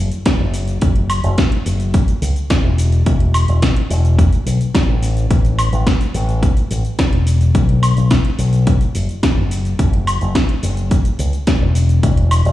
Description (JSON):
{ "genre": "nu-disco, nu disco", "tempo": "107 BPM", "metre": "4/4", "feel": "straight", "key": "unclear", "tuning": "A4 = 440 Hz", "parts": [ { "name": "fingered electric bass with an envelope filter", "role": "bass", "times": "0.0-12.5 s", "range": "E1 to C#2", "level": "-15 LUFS", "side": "left 1 dB", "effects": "none" }, { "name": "house drum kit", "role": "drums", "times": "0.1-12.5 s", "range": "hi-hat, shaker, snare drum, woodblock", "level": "-22 LUFS", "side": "equal", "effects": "studio reverb" }, { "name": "electronic kick drum", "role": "drums", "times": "0.3-12.1 s", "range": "none", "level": "-15 LUFS", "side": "equal", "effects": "studio reverb" } ], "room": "digital ambience", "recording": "played on a big sound system in a bare room, large studio reverb, studio reverb", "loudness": "-13 LUFS", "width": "side -14 dB against mid", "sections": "0.0-12.5 A section", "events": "none", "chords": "none" }